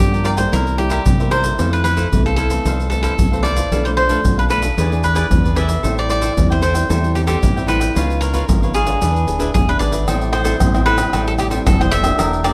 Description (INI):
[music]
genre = samba and choro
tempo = 113 BPM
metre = 4/4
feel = straight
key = unclear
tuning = A4 = 436 Hz
[part]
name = cavaquinho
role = melody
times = 0.0-12.5 s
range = G4 to E5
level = -23 LUFS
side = equal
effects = none
[part]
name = nylon-string guitar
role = accompaniment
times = 0.0-12.5 s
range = F2 to G#4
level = -27 LUFS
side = equal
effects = none
[part]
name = deep dub fingered electric bass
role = bass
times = 0.0-12.5 s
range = D1 to C3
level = -22 LUFS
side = equal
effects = none
[part]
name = tube shaker, surdo, pandeiro and tamborim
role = percussion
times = 0.0-12.5 s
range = none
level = -22 LUFS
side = equal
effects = none
[part]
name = cavaquinho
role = accompaniment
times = 0.1-12.5 s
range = D4 to G5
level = -27 LUFS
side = equal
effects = none
[sound]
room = moderate studio reverb, RT60 0.6 s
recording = none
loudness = -17 LUFS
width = mono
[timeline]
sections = 0.0-10.1 A section; 10.1-12.5 B section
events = none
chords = 0.0 Gm7; 0.5 C7; 1.6 Fmaj7; 3.7 Bm7b5; 4.8 E7; 5.8 Am7; 8.0 Db9; 9.0 E7; 10.1 Am7